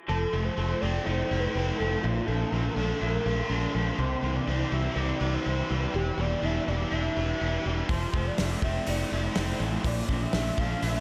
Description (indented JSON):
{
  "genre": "rock, shoegaze and dream pop",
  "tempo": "123 BPM",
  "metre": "4/4",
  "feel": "straight",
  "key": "unclear",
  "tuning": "A4 = 440 Hz",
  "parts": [
    { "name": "warm velvety synth lead", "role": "melody", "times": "0.1-11.0 s", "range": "F4 to F5", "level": "-36 LUFS", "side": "equal", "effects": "chorus, delay" },
    { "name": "crunchy overdriven guitar", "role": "riff", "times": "0.1-11.0 s", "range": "Bb2 to B4", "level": "-34 LUFS", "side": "equal", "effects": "lush chorus" },
    { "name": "electric guitar through a small old amp", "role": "riff", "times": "0.1-11.0 s", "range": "E2 to F4", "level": "-36 LUFS", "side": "equal", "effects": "reverse reverb" },
    { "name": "fingered electric bass", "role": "bass", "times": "0.1-11.0 s", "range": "E1 to C2", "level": "-32 LUFS", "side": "equal", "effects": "none" },
    { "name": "loose indie drum kit", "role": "drums", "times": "7.9-10.9 s", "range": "hi-hat, kick drum, snare drum", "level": "-34 LUFS", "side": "equal", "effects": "none" }
  ],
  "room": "wet huge ambient reverb, RT60 7.8 s",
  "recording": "dreamy mix soaked in reverb",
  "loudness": "-28 LUFS",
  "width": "mono",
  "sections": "0.1-11.0 A section",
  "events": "none",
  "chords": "0.1 Fmaj7; 2.0 Bbmaj7; 4.0 Cmaj7; 5.9 Em7; 7.9 Fmaj7; 9.9 Bbmaj7"
}